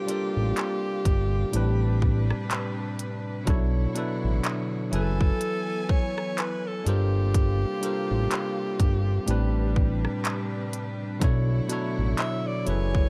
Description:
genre	contemporary R&B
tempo	62 BPM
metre	4/4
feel	swing 58% on 16ths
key	unclear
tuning	A4 = 440 Hz
part	warm alto saxophone	melody	0.0-13.1 s	G4 to E5	-34 LUFS	equal	none
part	bell-like tine electric piano	accompaniment	0.0-13.1 s	A2 to G#5	-32 LUFS	equal	none
part	warm studio string section	sustained chords	0.0-13.1 s	C3 to G#5	-40 LUFS	equal	none
part	trap drum kit	drums	0.1-13.1 s	handclaps, hi-hat, kick drum, rim click	-28 LUFS	equal	none
part	fat analog bass	bass	0.4-13.1 s	F#1 to B1	-27 LUFS	equal	none
room	little or no reverb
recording	dark, warm production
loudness	-26 LUFS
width	mono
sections	0.0-13.1 A section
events	none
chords	0.0 Gm11; 1.5 Am11; 3.5 Bm11; 4.9 F#m11; 6.9 Gm11; 9.3 Am11; 11.2 Bm11

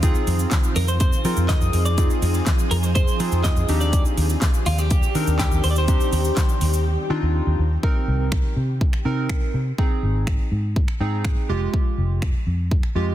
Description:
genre	dance-pop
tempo	123 BPM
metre	4/4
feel	straight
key	C minor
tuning	A4 = 440 Hz
part	warm analog keys	accompaniment	0.0-13.1 s	Ab3 to Bb4	-28 LUFS	right 1 dB	chorus, sidechain pumping
part	granular cloud pad	sustained chords	0.0-7.8 s	Eb3 to D5	-29 LUFS	equal	built-in reverb, sidechain pumping
part	vintage muted fingered electric bass	bass	0.0-13.1 s	F1 to F3	-21 LUFS	equal	sidechain pumping
part	pop drum kit	drums	0.0-12.9 s	finger snaps, handclaps, hi-hat, kick drum, shaker, snare drum	-21 LUFS	equal	soft clipping on snare
part	egg shaker	percussion	0.0-6.9 s	none	-39 LUFS	left 15 dB	none
part	twelve-string electric guitar	melody	0.8-7.6 s	F4 to Eb5	-28 LUFS	right 1 dB	lush chorus, digital delay
room	little or no reverb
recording	dense, heavily limited modern master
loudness	-18 LUFS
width	side -12 dB against mid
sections	0.0-7.8 A section; 7.8-13.1 B section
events	drums muted 6.9-7.8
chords	0.0 Fm7; 3.7 Cmadd9/Eb; 7.8 Cm7; 9.8 Ab; 11.5 Fmadd9

